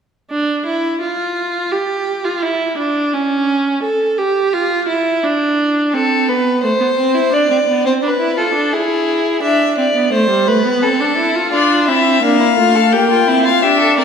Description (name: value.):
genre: classical, baroque-style fugue for string quartet.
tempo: 86 BPM.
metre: 4/4.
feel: straight.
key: D minor.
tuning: A4 = 441 Hz.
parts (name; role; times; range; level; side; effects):
clear viola; accompaniment; 0.3-14.0 s; G3 to A4; -15 LUFS; right 2 dB; none.
warm violin; second line; 5.9-14.0 s; D4 to E5; -15 LUFS; left 1 dB; none.
rich violin; melody; 11.5-14.0 s; D5 to G5; -14 LUFS; left 8 dB; none.
room: wet scoring stage reverb, RT60 2.0 s.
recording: recorded in a church or concert hall.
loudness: -13 LUFS.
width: side -7 dB against mid.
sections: 0.3-14.0 A section.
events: none.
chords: 0.3 N.C.; 5.9 Am; 7.3 Dm; 8.7 E7; 10.1 Am; 11.5 Dm; 12.9 Gm/Bb.